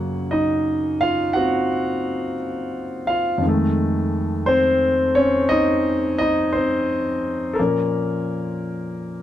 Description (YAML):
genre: solo jazz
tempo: 58 BPM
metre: 4/4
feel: swing 67% on 8ths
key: unclear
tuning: A4 = 440 Hz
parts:
  - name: dark concert grand piano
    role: solo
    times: 0.0-9.2 s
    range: F2 to Gb5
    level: -19 LUFS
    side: equal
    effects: none
room: light reverb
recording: close, detailed microphones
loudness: -18 LUFS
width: side -12 dB against mid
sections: 0.0-9.2 A section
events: none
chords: 0.0 Gbmaj7; 3.4 F7#9; 7.6 Bbm